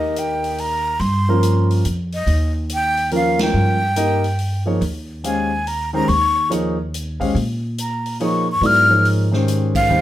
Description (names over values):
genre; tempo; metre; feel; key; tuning
modal jazz; 142 BPM; 3/4; swing 65% on 8ths; Eb mixolydian; A4 = 440 Hz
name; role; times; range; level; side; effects
breathy jazz flute; melody; 0.0-10.0 s; Eb5 to F6; -19 LUFS; left 1 dB; none
warm concert grand piano; accompaniment; 0.0-10.0 s; Eb3 to F5; -21 LUFS; equal; none
upright bass; bass; 0.0-10.0 s; Eb2 to Bb2; -21 LUFS; equal; none
swinging big-band drum kit; drums; 0.2-9.8 s; hi-hat, kick drum, ride cymbal, snare drum; -30 LUFS; equal; none
room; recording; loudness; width
light reverb; none; -16 LUFS; side -13 dB against mid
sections
0.0-10.0 A section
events
band accent 3.3, 9.7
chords
0.0 Cm/Eb (rootless); 4.8 Eb7sus4